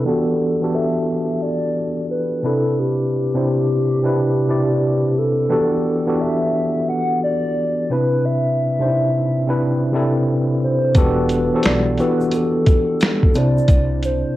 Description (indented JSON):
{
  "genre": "lo-fi hip hop",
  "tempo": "88 BPM",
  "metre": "4/4",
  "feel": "swing 66% on 16ths",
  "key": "E minor",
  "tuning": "A4 = 440 Hz",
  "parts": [
    { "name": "hollow clarinet-like synth lead", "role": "melody", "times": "0.0-14.4 s", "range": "G4 to F#5", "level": "-21 LUFS", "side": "equal", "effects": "chorus, low-pass filter, cassette tape, plate reverb" },
    { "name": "mellow tine electric piano", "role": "accompaniment", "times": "0.0-14.4 s", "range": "C3 to D5", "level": "-18 LUFS", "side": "equal", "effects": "medium stereo tremolo, low-pass filter, cassette tape" },
    { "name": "lo-fi sampler-style drum kit", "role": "drums", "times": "10.9-14.2 s", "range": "finger snaps, hi-hat, kick drum, snare drum", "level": "-16 LUFS", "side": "equal", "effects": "none" },
    { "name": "upright bass", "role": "bass", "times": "11.0-14.2 s", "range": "E1 to C2", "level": "-23 LUFS", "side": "equal", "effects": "tube saturation" },
    { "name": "egg shaker", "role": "percussion", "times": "11.0-14.2 s", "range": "none", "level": "-48 LUFS", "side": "right 4 dB", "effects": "none" }
  ],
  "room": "moderate studio reverb, RT60 0.6 s",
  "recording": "home recording on cassette",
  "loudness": "-16 LUFS",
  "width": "side -15 dB against mid",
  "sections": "0.0-11.0 A section; 11.0-14.4 B section",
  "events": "filter sweep 0.0-11.0",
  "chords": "0.0 Em11; 2.4 Cmaj9; 5.5 Em11; 7.9 Cmaj9; 11.0 Em11; 13.3 Cadd9"
}